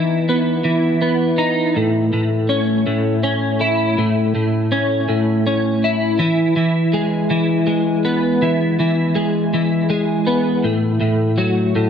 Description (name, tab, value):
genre	rock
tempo	54 BPM (dotted quarters)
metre	6/8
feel	straight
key	E major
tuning	A4 = 440 Hz
part	twelve-string electric guitar	solo	0.0-11.9 s	A2 to E4	-15 LUFS	equal	ensemble chorus, analog delay
room	wet scoring stage reverb, RT60 1.6 s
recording	nothing above 10.3 kHz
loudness	-15 LUFS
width	side -8 dB against mid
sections	0.0-6.2 A section; 6.2-11.9 B section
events	none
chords	0.0 E5; 1.8 A; 6.2 E; 10.6 A5